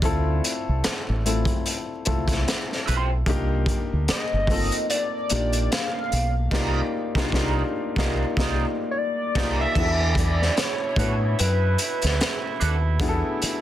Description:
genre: R&B, neo-soul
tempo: 74 BPM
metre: 4/4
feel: swing 57% on 16ths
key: unclear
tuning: A4 = 440 Hz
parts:
  - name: dark baby grand piano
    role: accompaniment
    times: 0.0-13.6 s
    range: A3 to D5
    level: -29 LUFS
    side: left 4 dB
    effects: none
  - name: deep dub fingered electric bass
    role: bass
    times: 0.0-13.5 s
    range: G1 to A2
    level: -24 LUFS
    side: equal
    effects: none
  - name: crunchy breakbeat drum kit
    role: drums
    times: 0.0-13.6 s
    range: crash cymbal, hi-hat, kick drum, snare drum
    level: -26 LUFS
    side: equal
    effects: none
  - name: electric guitar through a small old amp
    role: second line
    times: 2.5-12.8 s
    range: D4 to C5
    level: -30 LUFS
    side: right 6 dB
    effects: wah, vibrato effect
  - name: hollow square lead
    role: melody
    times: 4.1-12.6 s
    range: B4 to F5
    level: -28 LUFS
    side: equal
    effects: chorus, tape echo
  - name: clear horn section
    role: stabs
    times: 9.8-13.6 s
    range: B2 to E4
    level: -32 LUFS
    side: right 6 dB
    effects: none
room: little or no reverb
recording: dense, heavily limited modern master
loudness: -21 LUFS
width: side -12 dB against mid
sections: 0.0-9.8 A section; 9.8-13.6 B section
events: band accent 6.5-9.8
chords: 0.0 Dm11 (rootless); 3.3 Cm11; 9.8 E9sus4

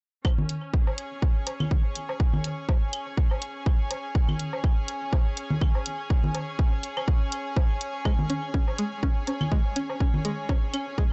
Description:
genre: minimal techno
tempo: 123 BPM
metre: 4/4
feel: swing 56% on 16ths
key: unclear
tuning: A4 = 440 Hz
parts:
  - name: electronic kick drum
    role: drums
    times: 0.2-11.1 s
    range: none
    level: -26 LUFS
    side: equal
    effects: none
  - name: claves, woodblock and congas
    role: percussion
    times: 0.2-10.8 s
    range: none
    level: -34 LUFS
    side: equal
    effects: tape echo
  - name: rich chamber string section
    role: texture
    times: 0.2-11.1 s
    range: C#4 to G#5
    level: -38 LUFS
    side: equal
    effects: sidechain pumping
  - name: electronic hi-hat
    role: drums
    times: 0.5-10.8 s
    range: none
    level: -36 LUFS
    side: equal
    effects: none
  - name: string-like resonator pluck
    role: riff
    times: 8.1-11.0 s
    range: G#3 to C#4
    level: -34 LUFS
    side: equal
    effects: chorus, phaser, sidechain pumping, delay
room: light reverb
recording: dark, warm production, nothing above 8.0 kHz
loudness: -27 LUFS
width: mono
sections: 0.2-11.1 A section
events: none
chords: 0.2 C#5

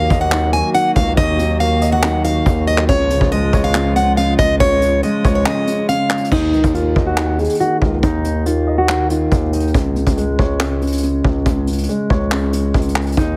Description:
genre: hip hop, trap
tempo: 140 BPM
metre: 4/4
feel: half-time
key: Eb minor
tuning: A4 = 440 Hz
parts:
  - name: picked plugged-in steel-string acoustic guitar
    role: melody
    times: 0.0-9.7, 13.2-13.4 s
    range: Eb4 to Ab5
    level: -20 LUFS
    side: equal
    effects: low-pass filter
  - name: dark concert grand piano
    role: accompaniment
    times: 0.0-13.4 s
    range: Db3 to Eb5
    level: -22 LUFS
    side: equal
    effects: low-pass filter
  - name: hollow soft pad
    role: sustained chords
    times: 0.0-6.3 s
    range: Db3 to Gb4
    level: -27 LUFS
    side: equal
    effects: chorus
  - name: distorted 808-style bass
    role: bass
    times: 0.0-13.4 s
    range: Db2 to Eb2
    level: -22 LUFS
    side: equal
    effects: distortion
  - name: vintage brush drum kit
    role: drums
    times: 0.1-13.3 s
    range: crash cymbal, handclaps, hi-hat, kick drum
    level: -22 LUFS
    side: equal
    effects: none
room: studio reverb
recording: heavily compressed radio sound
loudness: -16 LUFS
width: mono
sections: 0.0-6.3 A section; 6.3-13.4 B section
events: break 5.5-6.3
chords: 0.0 Ebm; 2.9 Db; 6.3 Eb5; 9.7 Db5

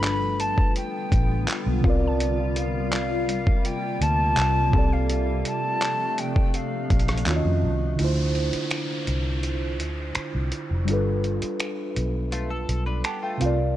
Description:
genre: contemporary R&B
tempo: 83 BPM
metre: 4/4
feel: straight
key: unclear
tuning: A4 = 440 Hz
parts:
  - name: breathy mellow jazz flute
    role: melody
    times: 0.0-7.6 s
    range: F5 to B5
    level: -28 LUFS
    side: left 1 dB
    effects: none
  - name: muted felt-like synth keys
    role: accompaniment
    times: 0.0-13.8 s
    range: C3 to A5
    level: -28 LUFS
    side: right 1 dB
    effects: chorus
  - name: granular cloud pad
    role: sustained chords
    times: 0.0-8.0 s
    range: C3 to F4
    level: -31 LUFS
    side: left 2 dB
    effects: built-in reverb
  - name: vintage muted fingered electric bass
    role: bass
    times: 0.0-13.8 s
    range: F1 to F2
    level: -25 LUFS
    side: equal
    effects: none
  - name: dusty soul sampler-style drum kit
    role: drums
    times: 0.0-13.6 s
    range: finger snaps, handclaps, hi-hat, kick drum, rim click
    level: -24 LUFS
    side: equal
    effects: none
  - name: mallet-like synth pluck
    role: texture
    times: 1.8-3.9 s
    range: F5 to A5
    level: -40 LUFS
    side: equal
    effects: chorus, analog delay
  - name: downlifter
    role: sound effects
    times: 8.0-13.8 s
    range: none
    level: -37 LUFS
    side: equal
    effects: none
  - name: direct-recorded clean electric guitar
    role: arpeggios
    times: 12.3-13.6 s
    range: A3 to B4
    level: -34 LUFS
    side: left 3 dB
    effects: analog chorus
room: little or no reverb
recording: dry, gritty hardware recording, cassette tape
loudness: -22 LUFS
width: side -13 dB against mid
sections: 0.0-8.0 A section; 8.0-13.8 B section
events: break 8.0-13.8; synth keys fill 12.7-13.8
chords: 0.0 G7; 1.8 C7sus4; 4.7 F6/C; 7.3 Ebm7; 8.0 Dm7; 10.9 G7

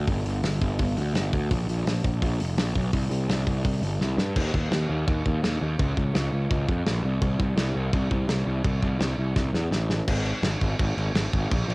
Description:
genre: punk rock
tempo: 168 BPM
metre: 4/4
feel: straight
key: unclear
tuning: A4 = 440 Hz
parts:
  - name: fuzz picked electric bass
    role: bass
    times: 0.0-11.7 s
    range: F1 to G2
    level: -25 LUFS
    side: equal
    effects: overdrive
  - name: loose indie drum kit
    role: drums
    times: 0.1-11.7 s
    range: crash cymbal, hi-hat, kick drum, snare drum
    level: -27 LUFS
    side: equal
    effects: cassette tape
room: little or no reverb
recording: home recording on cassette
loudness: -23 LUFS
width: side -26 dB against mid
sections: 0.0-4.4 A section; 4.4-10.1 B section; 10.1-11.7 C section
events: drum fill 4.0-4.4, 9.4-10.1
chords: none

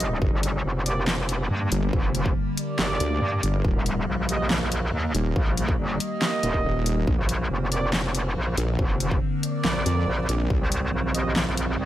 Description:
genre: heavy wobble dubstep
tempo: 140 BPM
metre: 4/4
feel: half-time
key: G minor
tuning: A4 = 440 Hz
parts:
  - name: evolving wavetable pad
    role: sustained chords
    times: 0.0-11.9 s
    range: D3 to Eb4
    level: -32 LUFS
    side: equal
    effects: phaser, built-in reverb, sidechain pumping
  - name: mellow brass ensemble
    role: stabs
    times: 0.0-11.3 s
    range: Bb3 to Eb5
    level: -31 LUFS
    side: right 2 dB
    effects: tape echo
  - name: metallic wobble bass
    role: bass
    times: 0.0-11.9 s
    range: Eb1 to G2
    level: -25 LUFS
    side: equal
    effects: chorus, overdrive
  - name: dubstep drum kit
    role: drums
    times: 0.0-11.7 s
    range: handclaps, hi-hat, snare drum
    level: -28 LUFS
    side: equal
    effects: overdrive
  - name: wobble bass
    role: bass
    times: 0.2-10.6 s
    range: Eb1 to F2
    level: -23 LUFS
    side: equal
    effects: chorus, overdrive
  - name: electronic kick drum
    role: drums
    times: 0.2-10.6 s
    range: none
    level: -25 LUFS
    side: equal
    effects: none
room: light reverb, digital ambience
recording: none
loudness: -22 LUFS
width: side -13 dB against mid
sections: 0.0-11.9 A section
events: none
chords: 0.2 Gm; 3.6 Eb; 7.1 Bbadd9; 10.5 Cm

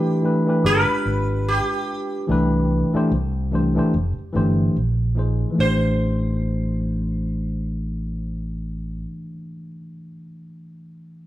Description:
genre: R&B, neo-soul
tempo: 73 BPM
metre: 4/4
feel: swing 58% on 16ths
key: A minor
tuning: A4 = 439 Hz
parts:
  - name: sitar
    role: melody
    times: 0.0-9.1 s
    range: G4 to C5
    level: -24 LUFS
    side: right 1 dB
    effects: none
  - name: tine electric piano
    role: accompaniment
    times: 0.0-11.3 s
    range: E3 to C5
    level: -23 LUFS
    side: left 1 dB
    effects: overdrive
  - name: fretless electric bass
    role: bass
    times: 0.6-9.0 s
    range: F1 to C2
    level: -23 LUFS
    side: equal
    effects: none
room: moderate large studio reverb, RT60 1.0 s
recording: band playing live in one room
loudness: -19 LUFS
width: side -14 dB against mid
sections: 0.0-5.6 A section; 5.6-8.9 B section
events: none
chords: 0.0 Am9; 0.6 G7b9; 2.3 Cmaj7; 3.1 C69; 3.9 Fmaj9; 4.7 Bbsus2; 5.6 Am7

